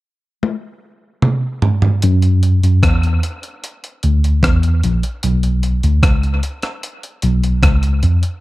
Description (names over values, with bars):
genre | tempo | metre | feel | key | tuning
dub reggae | 75 BPM | 4/4 | straight | unclear | A4 = 440 Hz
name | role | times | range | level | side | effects
breakbeat sampler-style drum kit | drums | 0.4-8.4 s | hi-hat, kick drum, rim click, toms | -16 LUFS | equal | none
mellow tine electric piano | bass | 2.0-8.2 s | A#1 to F#2 | -13 LUFS | equal | medium stereo tremolo
room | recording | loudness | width
little or no reverb | dark, warm production | -13 LUFS | side -18 dB against mid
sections
0.0-2.0 A section; 2.0-8.4 B section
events
drum fill 0.4-2.0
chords
none